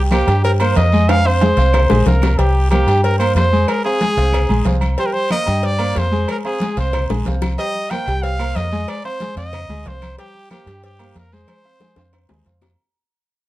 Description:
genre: latin, salsa.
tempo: 185 BPM.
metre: 4/4.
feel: straight.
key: C minor.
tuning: A4 = 441 Hz.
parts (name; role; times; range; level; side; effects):
clear trumpet; melody; 0.0-12.5 s; G4 to G5; -20 LUFS; equal; none.
bright grand piano; accompaniment; 0.0-12.7 s; G3 to Ab5; -22 LUFS; equal; none.
vintage muted fingered electric bass; bass; 0.0-12.7 s; Bb1 to G2; -17 LUFS; equal; none.
claves; percussion; 0.1-12.8 s; none; -35 LUFS; equal; none.
congas; percussion; 0.1-12.7 s; none; -25 LUFS; left 1 dB; none.
cowbell and bongos; percussion; 0.1-12.8 s; none; -28 LUFS; left 5 dB; none.
guiro; percussion; 0.1-12.8 s; none; -38 LUFS; left 5 dB; none.
timbales and agogo bells; percussion; 0.1-12.8 s; none; -28 LUFS; right 4 dB; none.
room: light reverb.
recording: dark, warm production.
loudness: -14 LUFS.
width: side -16 dB against mid.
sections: 0.0-2.4 A section; 2.4-12.8 A section.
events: drum fill 1.1-2.4, 7.1-7.6, 11.5-12.8; fade-out 2.4-12.8.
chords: 0.0 Cm7; 1.1 Fm; 2.4 C5; 3.7 Fm; 5.0 Cm7; 6.3 Fm; 7.6 Cm7; 8.9 Fm; 10.2 C5; 11.5 Fm.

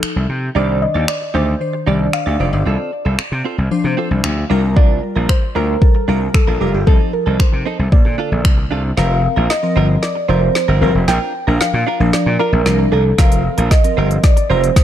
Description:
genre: dance-pop.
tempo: 114 BPM.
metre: 4/4.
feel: straight.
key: unclear.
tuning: A4 = 440 Hz.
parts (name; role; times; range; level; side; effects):
glassy digital keys; accompaniment; 0.0-14.8 s; D3 to Bb5; -22 LUFS; left 3 dB; chorus, sidechain pumping.
gritty slap bass; bass; 0.0-14.7 s; F1 to C3; -16 LUFS; equal; overdrive, sidechain pumping.
deep house drum kit; drums; 0.0-14.8 s; finger snaps, hi-hat, kick drum, snare drum; -14 LUFS; equal; none.
soft round pluck; melody; 0.6-14.8 s; G4 to G5; -20 LUFS; right 1 dB; chorus, ping-pong delay.
direct-recorded clean electric guitar; riff; 0.6-14.8 s; C4 to D5; -24 LUFS; right 6 dB; wide subtle chorus.
room: digital ambience.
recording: dark, warm production.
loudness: -13 LUFS.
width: side -11 dB against mid.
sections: 0.0-9.0 A section; 9.0-14.8 B section.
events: synth keys fill 4.0-4.8; build-up 9.0-14.8; drum fill 9.0-14.8.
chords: 0.0 N.C.; 0.6 Cmadd9; 2.7 Dm7/C; 4.5 Gm7; 6.9 F7/C; 7.9 Bbmaj7; 9.0 Fsus4; 11.1 Bb; 13.2 Fsus4.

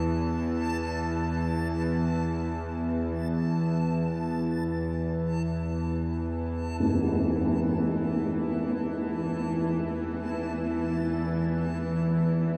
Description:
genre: dark ambient drone.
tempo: free time.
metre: none.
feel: none.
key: unclear.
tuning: A4 = 440 Hz.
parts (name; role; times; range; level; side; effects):
bowed-like drone; drone; 0.0-12.6 s; E2 to E3; -30 LUFS; equal; built-in reverb.
backwards swelling texture; texture; 0.0-12.6 s; A5; -42 LUFS; equal; built-in reverb, shimmer reverb.
tam-tam; percussion; 6.8-7.0 s; none; -32 LUFS; equal; low-pass filter on cymbals.
room: wet cathedral reverb, RT60 5.8 s.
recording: dark, warm production.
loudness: -29 LUFS.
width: mono.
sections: 0.0-12.6 A section.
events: fade-out on synth texture 0.0-12.6.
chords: 0.0 A5/E.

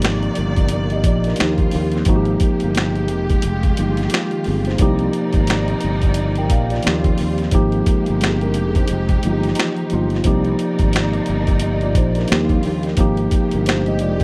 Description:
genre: R&B, neo-soul.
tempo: 88 BPM.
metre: 4/4.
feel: swing 61% on 16ths.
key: C minor.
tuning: A4 = 440 Hz.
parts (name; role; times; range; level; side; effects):
mellow tine electric piano; accompaniment; 0.0-14.2 s; F3 to G5; -22 LUFS; equal; none.
warm studio string section; sustained chords; 0.0-14.2 s; C3 to D5; -29 LUFS; equal; none.
sustaining fretless electric bass; bass; 0.0-14.2 s; F1 to Eb2; -24 LUFS; equal; ensemble chorus.
boom bap sampler-style drum kit; drums; 0.0-14.2 s; finger snaps, hi-hat, kick drum, snare drum; -22 LUFS; equal; none.
room: little or no reverb.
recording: dry, close 1970s-style studio recording.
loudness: -18 LUFS.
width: mono.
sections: 0.0-14.2 A section.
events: none.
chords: 0.0 Cm9; 1.4 Eb13; 2.1 Abmaj9; 3.4 Fm9; 4.8 Cm9; 6.8 Eb13; 7.5 Abmaj9; 8.9 Fm9; 10.2 Cm9; 12.3 Eb13; 13.0 Abmaj9.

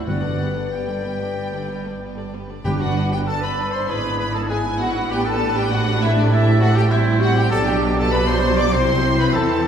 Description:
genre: quick classical-period movement for symphony orchestra.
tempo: 98 BPM.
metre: 4/4.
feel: rubato.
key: G major.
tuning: A4 = 442 Hz.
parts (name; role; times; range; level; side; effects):
rich studio violin section; melody; 0.0-9.7 s; D5 to D6; -28 LUFS; left 4 dB; none.
clear clarinet; second line; 0.0-9.7 s; D4 to D5; -28 LUFS; equal; none.
rich studio violin section; second line; 0.0-9.7 s; D4 to D5; -30 LUFS; left 2 dB; none.
small flute group; second line; 0.0-9.7 s; D5 to D6; -29 LUFS; equal; none.
rich studio viola section; accompaniment; 0.0-9.7 s; D3 to E4; -26 LUFS; right 2 dB; none.
rich studio cello section; bass; 0.0-9.7 s; G2 to E3; -27 LUFS; right 1 dB; none.
rich studio double bass section; bass; 0.0-9.7 s; G1 to E2; -23 LUFS; right 2 dB; none.
warm oboe; second line; 0.1-9.7 s; G#4 to G5; -30 LUFS; right 1 dB; none.
dark French horn section; sustained chords; 0.1-9.7 s; B3 to B4; -28 LUFS; left 2 dB; none.
timpani; percussion; 0.1-3.5 s; G2; -27 LUFS; equal; none.
mellow trumpet section; stabs; 2.6-9.7 s; D4 to D5; -28 LUFS; right 1 dB; none.
room: wet scoring stage reverb, RT60 1.6 s.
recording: heard from further back in the room.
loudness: -17 LUFS.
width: side -8 dB against mid.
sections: 0.0-2.6 A section; 2.6-9.7 B section.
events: none.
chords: 0.1 G; 3.9 E7/G#; 5.1 Am7; 7.5 G/B; 8.7 C.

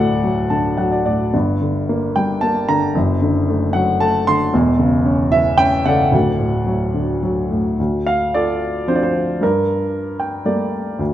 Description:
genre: classical, lyrical solo piano.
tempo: 112 BPM.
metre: 3/4.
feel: rubato.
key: D minor from 7.8 s.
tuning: A4 = 440 Hz.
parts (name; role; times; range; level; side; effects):
warm baby grand piano; solo; 0.0-11.1 s; D1 to C6; -15 LUFS; equal; none.
room: moderate recital hall reverb, RT60 1.6 s.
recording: none.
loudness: -15 LUFS.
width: side -12 dB against mid.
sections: 0.0-7.8 A section; 7.8-11.1 B section.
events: grand piano fill 0.2-1.3, 9.9-11.0.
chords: 0.0 D; 1.3 Gm; 3.0 D/F#; 4.5 A/E; 6.1 D; 7.8 Dm7; 9.4 Gmadd9.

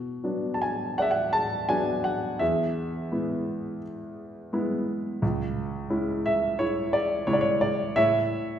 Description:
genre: classical, lyrical solo piano.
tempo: 86 BPM.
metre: 4/4.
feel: rubato.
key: B dorian.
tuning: A4 = 441 Hz.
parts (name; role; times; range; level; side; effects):
warm grand piano; solo; 0.0-8.6 s; C#2 to A5; -24 LUFS; equal; none.
room: wet recital hall reverb, RT60 1.8 s.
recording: heard from further back in the room.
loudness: -24 LUFS.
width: side -9 dB against mid.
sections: 0.0-8.6 A section.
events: none.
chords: 0.0 Bm; 2.4 E; 5.2 C#m; 8.0 A.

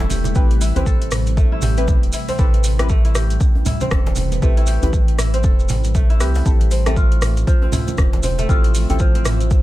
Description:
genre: afro house.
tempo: 118 BPM.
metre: 4/4.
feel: swing 59% on 16ths.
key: A minor.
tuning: A4 = 439 Hz.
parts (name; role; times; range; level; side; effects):
ethereal airy pad; sustained chords; 0.0-9.6 s; C3 to E5; -29 LUFS; equal; ensemble chorus, built-in reverb, phaser, sidechain pumping.
kora; arpeggios; 0.0-9.6 s; F3 to A4; -26 LUFS; equal; sidechain pumping, ping-pong delay.
round analog bass; bass; 0.0-9.6 s; E1 to C2; -19 LUFS; equal; tube saturation, sidechain pumping.
afro-pop drum kit; drums; 0.0-9.5 s; hi-hat, rim click, toms; -26 LUFS; equal; overdrive.
congas; percussion; 0.0-9.1 s; none; -28 LUFS; right 4 dB; none.
djembe; percussion; 0.0-9.6 s; none; -26 LUFS; equal; none.
maracas; percussion; 0.1-9.6 s; none; -31 LUFS; right 4 dB; none.
deep mellow chord stab; stabs; 0.4-9.6 s; C4 to B4; -28 LUFS; left 2 dB; chorus, phaser, sidechain pumping, ping-pong delay.
electronic kick drum; drums; 0.4-9.6 s; none; -16 LUFS; equal; overdrive.
room: little or no reverb.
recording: none.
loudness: -14 LUFS.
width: side -16 dB against mid.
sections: 0.0-9.6 A section.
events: none.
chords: 0.0 Am7; 6.5 Fmaj7.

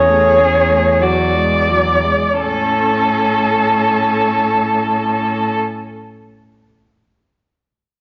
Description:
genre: classical, slow romantic movement for string quartet.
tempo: 42 BPM.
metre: 3/4.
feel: rubato.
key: A major.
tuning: A4 = 439 Hz.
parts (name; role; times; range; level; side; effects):
muted violin; melody; 0.0-5.6 s; A4 to D5; -18 LUFS; equal; none.
muted violin; second line; 0.0-5.6 s; F#4 to A4; -20 LUFS; equal; none.
muted viola; accompaniment; 0.0-5.6 s; F#3 to C#4; -25 LUFS; equal; none.
muted cello; bass; 0.0-5.6 s; E2 to A2; -23 LUFS; equal; none.
room: wet stone room reverb, RT60 1.3 s.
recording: nothing above 7.5 kHz.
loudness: -15 LUFS.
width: mono.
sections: 0.0-2.4 A section; 2.4-6.6 B section.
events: slowing down 0.0-2.4.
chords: 0.0 A/E; 1.0 E9; 2.4 A.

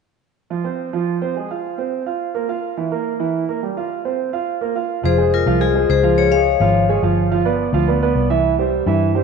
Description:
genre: latin, salsa.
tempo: 212 BPM.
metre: 4/4.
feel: straight.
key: F harmonic minor.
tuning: A4 = 436 Hz.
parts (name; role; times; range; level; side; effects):
dark concert grand piano; accompaniment; 0.5-9.2 s; E3 to F5; -19 LUFS; right 7 dB; none.
vintage muted fingered electric bass; bass; 5.0-9.2 s; F1 to G2; -19 LUFS; left 2 dB; none.
vibraphone with medium hard mallets; melody; 5.1-6.8 s; F4 to F5; -17 LUFS; left 11 dB; tape echo.
room: moderate echo chamber reverb, RT60 2.3 s.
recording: 1960s-style stereo with parts hard left and right, nothing above 10.6 kHz.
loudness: -16 LUFS.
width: side -5 dB against mid.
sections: 0.5-5.0 A section; 5.0-9.2 B section.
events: none.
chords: 0.5 Fm; 1.6 Bbsus2; 2.8 Edim; 3.9 Bbsus2; 5.0 Fm; 6.2 Db; 7.3 G7; 8.4 C.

